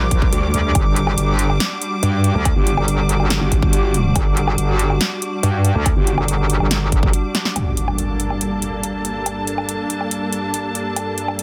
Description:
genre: heavy wobble dubstep.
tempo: 141 BPM.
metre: 4/4.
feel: half-time.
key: G harmonic minor.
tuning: A4 = 440 Hz.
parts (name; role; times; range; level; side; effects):
evolving wavetable pad; sustained chords; 0.0-11.4 s; G2 to A4; -28 LUFS; equal; ensemble chorus, built-in reverb, vintage 12-bit sampler grit, sidechain pumping.
metallic wobble bass; bass; 0.0-7.1 s; G1 to D2; -20 LUFS; equal; chorus, overdrive.
muted studio string section; texture; 0.0-11.4 s; G3 to D6; -28 LUFS; equal; sidechain pumping.
big-room dance drum kit; drums; 0.1-11.4 s; hi-hat, snare drum, woodblock; -24 LUFS; equal; none.
electronic kick drum; drums; 0.1-7.1 s; none; -19 LUFS; equal; none.
metallic wobble bass; bass; 0.3-6.2 s; G1 to G2; -20 LUFS; equal; distortion, chorus, overdrive.
impact; sound effects; 7.6-9.3 s; none; -28 LUFS; equal; none.
room: digital ambience.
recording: dense, heavily limited modern master.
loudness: -19 LUFS.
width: mono.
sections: 0.0-7.6 A section; 7.6-11.4 B section.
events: drop 0.0-7.6; break 7.1-7.6; drum fill 7.3; impact 7.6-9.3.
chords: 0.0 G5; 7.6 Gmadd9.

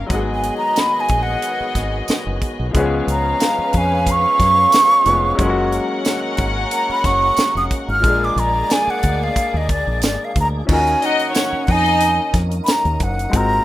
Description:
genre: lush 1970s-style soul.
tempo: 91 BPM.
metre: 4/4.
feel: swing 54% on 16ths.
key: Eb minor.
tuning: A4 = 439 Hz.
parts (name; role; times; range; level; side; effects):
warm studio string section; second line; 0.0-12.3 s; Bb3 to Gb5; -24 LUFS; left 1 dB; none.
clear grand piano; accompaniment; 0.0-13.6 s; F3 to Bb4; -25 LUFS; left 3 dB; none.
fingered electric bass; bass; 0.0-13.6 s; F1 to Gb2; -21 LUFS; equal; none.
breathy hollow jazz flute; melody; 0.1-13.6 s; D5 to F6; -17 LUFS; right 1 dB; slapback echo.
tonewheel organ; sustained chords; 0.1-13.6 s; Bb2 to Ab4; -30 LUFS; equal; fast rotary speaker, chorus vibrato.
tight funk drum kit; drums; 0.1-13.5 s; crash cymbal, hi-hat, kick drum, snare drum; -20 LUFS; equal; none.
tambourine; percussion; 0.8-12.8 s; none; -30 LUFS; right 3 dB; none.
room: little or no reverb.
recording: rough home demo mix.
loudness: -15 LUFS.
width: side -15 dB against mid.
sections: 0.0-10.7 A section; 10.7-13.6 B section.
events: flute solo 0.0-10.7.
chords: 0.1 Abm7; 2.7 Db7; 5.4 Gbadd9; 8.0 Bb7; 10.7 Ebm9.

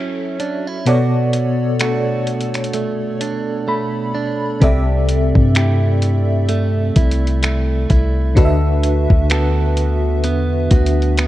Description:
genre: contemporary R&B.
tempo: 64 BPM.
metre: 4/4.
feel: swing 58% on 16ths.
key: unclear.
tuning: A4 = 440 Hz.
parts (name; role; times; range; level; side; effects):
FM electric piano with soft pad layer; accompaniment; 0.0-11.3 s; B2 to B5; -20 LUFS; left 1 dB; chorus, tremolo.
direct-recorded clean electric guitar; arpeggios; 0.0-11.3 s; B2 to A4; -21 LUFS; right 4 dB; warbly pitch drift.
dusty soul sampler-style drum kit; drums; 0.4-11.3 s; finger snaps, hi-hat, kick drum; -16 LUFS; equal; none.
warm 808-style bass; bass; 4.6-11.3 s; C2 to G2; -16 LUFS; equal; none.
room: little or no reverb.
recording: worn, warbling old tape, cassette tape, warbly pitch drift.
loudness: -14 LUFS.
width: side -15 dB against mid.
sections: 0.0-11.3 A section.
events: break 0.0-4.6; FM electric piano fill 3.2-4.6; drums muted 3.7-4.6.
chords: 0.0 F#m7; 0.9 Bm7; 4.6 C6; 8.4 D6.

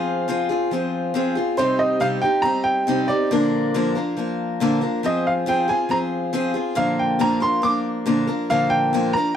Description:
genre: country.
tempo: 139 BPM.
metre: 4/4.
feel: straight.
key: unclear.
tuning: A4 = 440 Hz.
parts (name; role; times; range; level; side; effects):
bright upright piano; melody; 0.0-9.4 s; C5 to D6; -21 LUFS; right 1 dB; none.
picked acoustic archtop guitar; accompaniment; 0.0-9.4 s; Bb2 to Bb4; -20 LUFS; left 1 dB; none.
room: little or no reverb.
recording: dry, close 1970s-style studio recording.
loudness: -18 LUFS.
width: side -9 dB against mid.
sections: 0.0-9.4 A section.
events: none.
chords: 0.0 Fm; 1.6 Cm; 3.3 Bb; 5.0 Fm; 6.8 Bb.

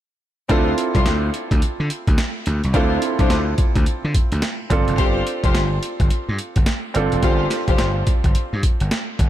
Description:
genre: R&B, new jack swing.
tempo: 107 BPM.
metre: 4/4.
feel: swing 62% on 16ths.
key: D minor.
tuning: A4 = 441 Hz.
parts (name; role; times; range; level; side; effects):
clear baby grand piano; accompaniment; 0.5-9.3 s; C4 to A4; -25 LUFS; right 4 dB; none.
dark studio string section; stabs; 0.5-7.8 s; D4 to C5; -26 LUFS; left 4 dB; diffuse ambient delay.
gritty slap bass; bass; 0.5-9.3 s; F1 to D3; -21 LUFS; equal; overdrive.
boom bap sampler-style drum kit; drums; 0.5-9.3 s; hi-hat, kick drum, snare drum; -19 LUFS; equal; overdrive.
room: light reverb.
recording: none.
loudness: -17 LUFS.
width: side -12 dB against mid.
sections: 0.5-9.3 A section.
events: none.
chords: 0.5 Dm7; 4.7 G7sus4.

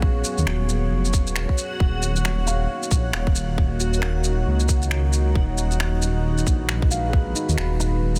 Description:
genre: future garage.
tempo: 135 BPM.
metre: 4/4.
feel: swing 60% on 16ths.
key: Eb minor.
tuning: A4 = 439 Hz.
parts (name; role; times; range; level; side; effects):
muted felt-like synth keys; accompaniment; 0.0-8.2 s; Db4 to F5; -35 LUFS; equal; chorus, vintage 12-bit sampler grit, sidechain pumping, tape echo.
deep dark ambient pad; sustained chords; 0.0-8.2 s; Gb3 to Db5; -31 LUFS; equal; chorus, built-in reverb, vintage 12-bit sampler grit, sidechain pumping.
dark detuned saw bass; bass; 0.0-8.2 s; Eb1 to Eb2; -25 LUFS; equal; sidechain pumping.
electronic kick drum; drums; 0.0-7.2 s; none; -22 LUFS; equal; studio reverb.
backwards swelling texture; texture; 0.0-8.2 s; Gb4 to Gb5; -38 LUFS; equal; built-in reverb.
electronic shaker, finger snaps and rim click; drums; 0.2-8.2 s; none; -32 LUFS; equal; studio reverb, soft clipping on snare.
room: little or no reverb.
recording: dense, heavily limited modern master.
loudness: -22 LUFS.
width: mono.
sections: 0.0-8.2 A section.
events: none.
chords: 0.0 Db7sus4/Eb; 1.8 Ebm7; 5.4 Abm7/Eb.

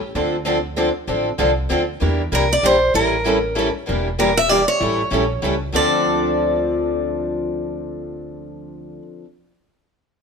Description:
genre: acoustic string swing (jazz manouche).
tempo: 194 BPM.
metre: 3/4.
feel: swing 61% on 8ths.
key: D minor.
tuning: A4 = 440 Hz.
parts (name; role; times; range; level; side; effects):
picked steel-string acoustic guitar; accompaniment; 0.2-9.3 s; D3 to A4; -22 LUFS; left 3 dB; none.
picked steel-string acoustic guitar; accompaniment; 0.2-9.3 s; D3 to Bb4; -24 LUFS; right 3 dB; none.
upright bass; bass; 0.2-9.0 s; E1 to E2; -26 LUFS; equal; none.
picked steel-string acoustic guitar; melody; 2.3-9.0 s; Bb4 to E5; -18 LUFS; right 1 dB; none.
room: moderate studio reverb, RT60 1.0 s.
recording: minimal, uncompressed stereo recording.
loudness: -17 LUFS.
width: side -6 dB against mid.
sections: 0.0-2.0 A section; 2.0-5.7 B section; 5.7-7.6 C section.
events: none.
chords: 0.2 Dm7; 2.0 Em7b5; 2.9 A7b9; 3.9 Em7b5; 4.8 A7b9; 5.7 Dm7.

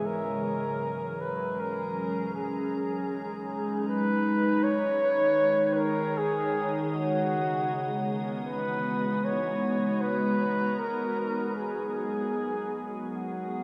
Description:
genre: ambient.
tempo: free time.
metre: none.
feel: none.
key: G# minor.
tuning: A4 = 440 Hz.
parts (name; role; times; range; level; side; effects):
mellow flugelhorn; melody; 0.0-13.6 s; F#4 to C#5; -31 LUFS; equal; diffuse ambient delay.
glassy FM pad; sustained chords; 0.0-13.6 s; C#3 to A#5; -33 LUFS; equal; ensemble chorus, built-in reverb.
muted felt-like synth keys; arpeggios; 0.0-2.5 s; G#3 to A#5; -44 LUFS; equal; chorus, diffuse ambient delay.
organ-like drone; drone; 0.0-13.6 s; G#3 to D#4; -40 LUFS; equal; ensemble chorus, built-in reverb.
room: wet cathedral reverb, RT60 5.7 s.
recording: in a vast, echoing space, faint mains hum.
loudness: -29 LUFS.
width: mono.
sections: 0.0-4.7 A section; 4.7-13.6 B section.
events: none.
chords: 0.0 F#add9; 2.3 G#madd9; 4.7 D#7sus4; 7.0 C#m11; 9.3 G#m9; 11.6 F#sus24.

